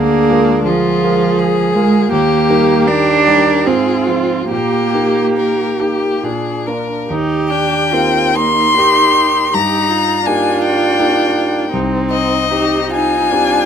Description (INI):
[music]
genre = classical, slow romantic movement for piano quartet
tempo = 66-85 BPM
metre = 3/4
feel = rubato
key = Eb major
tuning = A4 = 441 Hz
[part]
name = rich violin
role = melody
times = 0.0-13.7 s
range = D4 to C6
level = -16 LUFS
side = left 4 dB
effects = none
[part]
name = warm cello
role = second line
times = 0.0-13.7 s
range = F3 to G4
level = -16 LUFS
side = right 4 dB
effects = none
[part]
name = dark viola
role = accompaniment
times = 0.0-13.7 s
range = Bb3 to Ab4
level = -19 LUFS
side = equal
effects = none
[part]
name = warm concert grand piano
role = accompaniment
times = 0.0-13.7 s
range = C2 to Bb4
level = -19 LUFS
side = equal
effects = none
[sound]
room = little or no reverb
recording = close, detailed microphones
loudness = -11 LUFS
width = side -8 dB against mid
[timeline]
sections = 0.0-7.1 A section; 7.1-13.7 B section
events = none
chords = 0.0 Bb7/D; 2.1 Eb; 3.7 Fm/Ab; 4.5 Eb/Bb; 6.2 Bb; 7.1 Eb; 9.5 Eb/G; 11.7 Cm